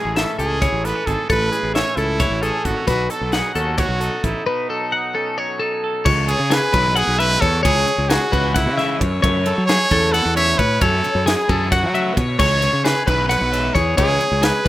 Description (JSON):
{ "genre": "math rock and midwest emo", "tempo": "265 BPM (eighths)", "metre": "7/8", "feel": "straight", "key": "unclear", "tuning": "A4 = 440 Hz", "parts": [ { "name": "bright trumpet", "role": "melody", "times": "0.0-14.7 s", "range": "D#4 to C#5", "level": "-21 LUFS", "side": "right 2 dB", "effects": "none" }, { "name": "twangy electric guitar", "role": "accompaniment", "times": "0.0-6.1 s", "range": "A2 to A4", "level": "-29 LUFS", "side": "right 8 dB", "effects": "none" }, { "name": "twelve-string electric guitar", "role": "arpeggios", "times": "0.0-14.7 s", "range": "G#4 to F#5", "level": "-21 LUFS", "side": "left 3 dB", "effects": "analog delay" }, { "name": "fuzz fingered electric bass", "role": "bass", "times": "0.1-14.7 s", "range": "G#1 to F#3", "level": "-22 LUFS", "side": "equal", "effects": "overdrive" }, { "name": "crisp fusion drum kit", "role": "drums", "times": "0.2-14.7 s", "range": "crash cymbal, hi-hat, kick drum, ride cymbal, snare drum", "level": "-23 LUFS", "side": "equal", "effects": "none" }, { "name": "overdriven electric guitar", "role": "riff", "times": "6.1-14.7 s", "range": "C#3 to C#4", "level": "-28 LUFS", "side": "right 2 dB", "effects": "phaser" } ], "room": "little or no reverb", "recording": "rough home demo mix", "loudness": "-16 LUFS", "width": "side -14 dB against mid", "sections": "0.0-6.1 A section; 6.1-14.7 B section", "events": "none", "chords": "0.0 Amaj7; 2.9 B9; 6.1 C#m7; 9.2 F#m7; 12.4 C#m7" }